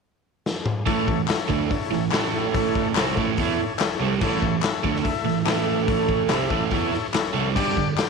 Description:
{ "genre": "garage rock duo or trio", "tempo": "144 BPM", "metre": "4/4", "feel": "straight", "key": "A mixolydian", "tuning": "A4 = 445 Hz", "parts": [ { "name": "raw garage drum kit", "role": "drums", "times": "0.5-8.1 s", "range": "crash cymbal, hi-hat, kick drum, snare drum, toms", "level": "-26 LUFS", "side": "left 3 dB", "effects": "none" }, { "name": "combo organ", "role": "sustained chords", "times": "0.9-8.1 s", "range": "D4 to E5", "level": "-28 LUFS", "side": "left 12 dB", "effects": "none" }, { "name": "overdriven electric guitar", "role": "riff", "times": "0.9-7.9 s", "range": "G2 to E4", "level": "-24 LUFS", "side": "right 11 dB", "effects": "spring reverb" }, { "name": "tine electric piano", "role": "bass", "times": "0.9-8.0 s", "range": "G1 to E2", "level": "-31 LUFS", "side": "left 2 dB", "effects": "medium stereo tremolo" }, { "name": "group handclap", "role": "percussion", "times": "1.3-8.1 s", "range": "none", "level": "-30 LUFS", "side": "left 14 dB", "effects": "none" } ], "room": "light reverb, small room reverb", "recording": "1960s-style stereo with parts hard left and right", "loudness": "-20 LUFS", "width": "side -4 dB against mid", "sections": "0.9-8.1 A section", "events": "drum fill 0.5-0.9", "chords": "0.0 N.C.; 0.9 A; 7.6 G5", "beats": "0.04 0.46 | 0.88 1.29 1.71 2.13 | 2.54 2.96 3.38 3.80 | 4.21 4.63 5.05 5.47 | 5.88 6.30 6.72 7.14 | 7.55 7.97" }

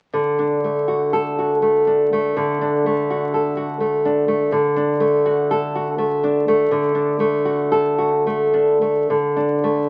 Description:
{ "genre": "romantic piece for solo classical guitar", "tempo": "69-86 BPM", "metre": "3/4", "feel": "rubato", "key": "D major", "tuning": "A4 = 438 Hz", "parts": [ { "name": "nylon-string guitar", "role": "solo", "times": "0.1-9.9 s", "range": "D3 to A4", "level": "-19 LUFS", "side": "equal", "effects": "none" } ], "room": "wet large studio reverb, RT60 1.2 s", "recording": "very old 78 rpm record, vinyl crackle", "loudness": "-19 LUFS", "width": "mono", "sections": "0.1-9.1 A section", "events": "none", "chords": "0.1 D; 9.1 D5", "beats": "| 0.14 0.89 1.64 | 2.37 3.10 3.81 | 4.52 5.23 5.97 | 6.70 7.45 8.25 | 9.09 9.89" }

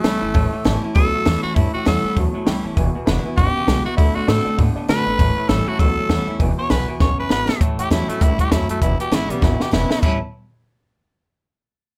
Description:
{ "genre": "rockabilly", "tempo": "198 BPM", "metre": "4/4", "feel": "swing 59% on 8ths", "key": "A mixolydian", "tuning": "A4 = 436 Hz", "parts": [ { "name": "growling tenor saxophone", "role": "melody", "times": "0.0-10.2 s", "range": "G3 to C#5", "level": "-25 LUFS", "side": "equal", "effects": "slapback echo" }, { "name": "picked steel-string acoustic guitar", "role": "accompaniment", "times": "0.0-10.2 s", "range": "E2 to F#4", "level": "-30 LUFS", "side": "equal", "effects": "none" }, { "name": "electric guitar through a small old amp", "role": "riff", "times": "0.0-10.2 s", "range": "E2 to B4", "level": "-29 LUFS", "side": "equal", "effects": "none" }, { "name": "upright bass", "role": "bass", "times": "0.0-10.2 s", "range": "E1 to A2", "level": "-25 LUFS", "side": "equal", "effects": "none" }, { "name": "compact cocktail drum kit", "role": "drums", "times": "0.0-10.1 s", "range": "crash cymbal, hi-hat, kick drum, snare drum", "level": "-22 LUFS", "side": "equal", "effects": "none" }, { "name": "dark upright piano", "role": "accompaniment", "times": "0.3-10.2 s", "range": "B4 to C6", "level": "-35 LUFS", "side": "equal", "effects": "none" } ], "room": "little or no reverb", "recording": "none", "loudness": "-19 LUFS", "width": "mono", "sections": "0.0-7.6 A section; 7.6-10.0 B section; 10.0-11.2 C section", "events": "drum fill 7.0-7.6, 9.4-10.0", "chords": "0.0 A7; 2.8 E7; 4.0 D7; 5.2 A7; 6.4 E7; 7.6 A7; 8.8 E7; 10.0 A7", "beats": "0.04 | 0.35 0.65 0.95 1.25 | 1.56 1.86 2.17 2.47 | 2.77 3.07 3.38 3.68 | 3.98 4.28 4.59 4.89 | 5.19 5.49 5.79 6.10 | 6.40 6.70 7.00 7.30 | 7.61 7.91 8.21 8.51 | 8.81 9.12 9.42 9.72 | 10.02" }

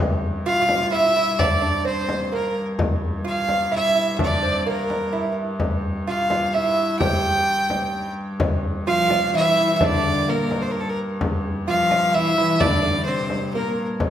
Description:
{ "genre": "medieval dance", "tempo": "128 BPM", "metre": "3/4", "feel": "straight", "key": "G dorian", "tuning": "A4 = 440 Hz", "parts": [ { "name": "rich hurdy-gurdy", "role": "drone", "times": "0.0-14.1 s", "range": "G2", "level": "-29 LUFS", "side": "equal", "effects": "none" }, { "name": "clear fiddle", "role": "melody", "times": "0.5-13.9 s", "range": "A4 to G5", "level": "-21 LUFS", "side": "right 1 dB", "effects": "none" }, { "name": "lute", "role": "second line", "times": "0.5-13.9 s", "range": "Bb3 to G4", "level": "-25 LUFS", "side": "right 3 dB", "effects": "none" }, { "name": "frame drum", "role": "percussion", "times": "0.7-14.1 s", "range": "none", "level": "-25 LUFS", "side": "left 2 dB", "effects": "none" }, { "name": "warm viola da gamba", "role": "second line", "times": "8.9-13.9 s", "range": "Bb2 to F3", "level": "-26 LUFS", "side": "left 3 dB", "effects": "none" } ], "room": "wet recital hall reverb, RT60 1.5 s", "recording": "recorded in a church or concert hall", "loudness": "-19 LUFS", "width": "side -10 dB against mid", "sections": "0.0-8.4 A section; 8.4-14.1 A section", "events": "none", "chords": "none", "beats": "0.45 0.92 | 1.39 1.85 2.32 | 2.79 3.26 3.73 | 4.19 4.66 5.13 | 5.60 6.06 6.53 | 7.00 7.47 7.93 | 8.40 8.87 9.34 | 9.80 10.27 10.74 | 11.21 11.68 12.14 | 12.61 13.08 13.54 | 14.01" }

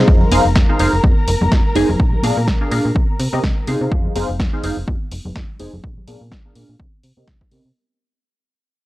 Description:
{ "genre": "filtered disco house", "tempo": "125 BPM", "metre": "4/4", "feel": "swing 56% on 16ths", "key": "F dorian", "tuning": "A4 = 439 Hz", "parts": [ { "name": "funky polysynth comp", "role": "accompaniment", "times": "0.0-7.6 s", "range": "C4 to Ab5", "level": "-19 LUFS", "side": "equal", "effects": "chorus, phaser, sidechain pumping, low-pass filter" }, { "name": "dark symphonic string section", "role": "sustained chords", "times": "0.0-3.9 s", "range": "Bb4 to Bb5", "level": "-25 LUFS", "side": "left 1 dB", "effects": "sidechain pumping, low-pass filter" }, { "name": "slap-like FM bass", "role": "bass", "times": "0.0-7.7 s", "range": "F1 to C3", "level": "-20 LUFS", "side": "equal", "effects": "transformer saturation, sidechain pumping, low-pass filter" }, { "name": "electronic kick drum", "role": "drums", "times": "0.1-7.5 s", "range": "none", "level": "-16 LUFS", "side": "equal", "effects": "overdrive" }, { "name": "tambourine and congas", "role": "percussion", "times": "0.1-7.7 s", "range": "none", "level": "-26 LUFS", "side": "left 1 dB", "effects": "sidechain pumping on perc, low-pass filter on perc" }, { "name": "house drum kit", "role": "drums", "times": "0.3-7.6 s", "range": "hi-hat, snare drum", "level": "-26 LUFS", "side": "equal", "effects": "sidechain pumping on hats, sidechain pumping on cymbals, sidechain pumping on perc" } ], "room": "digital ambience", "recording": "dry, gritty hardware recording, cassette tape", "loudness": "-14 LUFS", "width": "side -17 dB against mid", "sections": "0.1-7.8 A section", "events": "fade-out 0.1-7.8; filter sweep 0.1-7.8", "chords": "0.1 Fm7; 2.0 Bb7; 3.0 Cm7; 3.9 Fm7; 5.8 Bb7; 6.8 Cm7", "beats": "| 0.08 0.56 1.04 1.52 | 2.00 2.48 2.96 3.44 | 3.92 4.40 4.88 5.36 | 5.84 6.32 6.80 7.28" }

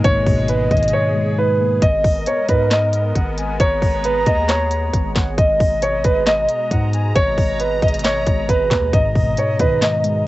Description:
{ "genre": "hip hop, trap", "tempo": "135 BPM", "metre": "4/4", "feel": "half-time", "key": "G# minor", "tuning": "A4 = 441 Hz", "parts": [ { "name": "dark baby grand piano", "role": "melody", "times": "0.0-10.3 s", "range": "B4 to D#5", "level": "-19 LUFS", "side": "right 1 dB", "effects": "low-pass filter, cassette tape" }, { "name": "mellow jazz flute", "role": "second line", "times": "0.0-10.2 s", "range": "D#5 to A#5", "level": "-25 LUFS", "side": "equal", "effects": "cassette tape, analog delay" }, { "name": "mellow tine electric piano", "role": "accompaniment", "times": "0.0-1.8, 8.9-10.3 s", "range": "G#2 to A#3", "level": "-20 LUFS", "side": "left 1 dB", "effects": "medium stereo tremolo, low-pass filter, cassette tape" }, { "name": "sweeping resonant pad", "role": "sustained chords", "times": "0.0-10.3 s", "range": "B2 to A#5", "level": "-29 LUFS", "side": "equal", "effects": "chorus, cassette tape" }, { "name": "long sustained 808-style bass", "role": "bass", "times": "0.0-10.2 s", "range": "G#1 to G#2", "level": "-23 LUFS", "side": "equal", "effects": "none" }, { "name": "trap drum kit", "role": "drums", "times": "0.0-10.2 s", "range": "handclaps, hi-hat, kick drum, snare drum", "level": "-19 LUFS", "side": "equal", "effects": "cassette tape" } ], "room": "light reverb", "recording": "home recording on cassette, nothing above 8.0 kHz", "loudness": "-15 LUFS", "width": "side -17 dB against mid", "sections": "0.0-1.8 A section; 1.8-10.3 A section", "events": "drums muted 0.9-1.8", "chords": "0.0 G#madd9", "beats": "| 0.04 0.49 0.93 1.38 | 1.82 2.27 2.71 3.15 | 3.60 4.04 4.49 4.93 | 5.38 5.82 6.27 6.71 | 7.16 7.60 8.04 8.49 | 8.93 9.38 9.82 10.27" }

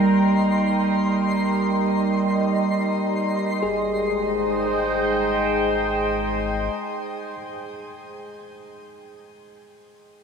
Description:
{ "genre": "ambient", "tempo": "free time", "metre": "none", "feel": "none", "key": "Ab major", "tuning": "A4 = 440 Hz", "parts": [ { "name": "evolving wavetable pad", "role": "sustained chords", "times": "0.0-7.8 s", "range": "G3 to G5", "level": "-24 LUFS", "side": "equal", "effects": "phaser, built-in reverb, shimmer reverb" }, { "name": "overdriven tine electric piano", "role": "arpeggios", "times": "0.0-10.2 s", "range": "G3 to Ab4", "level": "-24 LUFS", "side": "moving between left 2 dB and right 4 dB", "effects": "auto-pan, diffuse ambient delay, shimmer reverb" }, { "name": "round analog bass", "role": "bass", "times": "0.0-6.7 s", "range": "Ab1", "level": "-38 LUFS", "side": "left 1 dB", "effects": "none" }, { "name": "twinkling granular texture", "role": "texture", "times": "0.0-3.6 s", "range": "C6", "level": "-32 LUFS", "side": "left 1 dB", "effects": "built-in reverb, shimmer reverb" } ], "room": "wet cathedral reverb, RT60 6.4 s", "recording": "none", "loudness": "-20 LUFS", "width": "side -6 dB against mid", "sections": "0.0-3.6 A section; 3.6-7.8 B section", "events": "none", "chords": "0.0 Abmaj7", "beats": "free time" }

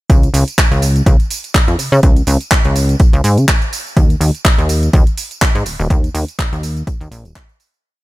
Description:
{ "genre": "filtered disco house", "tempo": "124 BPM", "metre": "4/4", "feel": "swing 56% on 16ths", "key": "unclear", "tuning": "A4 = 438 Hz", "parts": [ { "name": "plucky analog bass", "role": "bass", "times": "0.1-7.3 s", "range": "Eb1 to Db3", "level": "-14 LUFS", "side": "equal", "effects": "sidechain pumping" }, { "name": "electronic kick drum", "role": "drums", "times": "0.1-7.5 s", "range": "none", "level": "-12 LUFS", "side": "equal", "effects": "none" }, { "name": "house drum kit", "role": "drums", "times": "0.1-7.8 s", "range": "handclaps, hi-hat, tambourine", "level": "-19 LUFS", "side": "right 1 dB", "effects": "sidechain pumping on hats, sidechain pumping on perc" } ], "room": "little or no reverb", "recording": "none", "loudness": "-11 LUFS", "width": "side -18 dB against mid", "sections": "0.1-7.8 drop", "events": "drop 0.1-7.8; fade-out 5.3-7.8", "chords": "none", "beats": "| 0.10 0.58 1.06 1.55 | 2.03 2.51 3.00 3.48 | 3.97 4.45 4.93 5.42 | 5.90 6.38 6.87 7.35" }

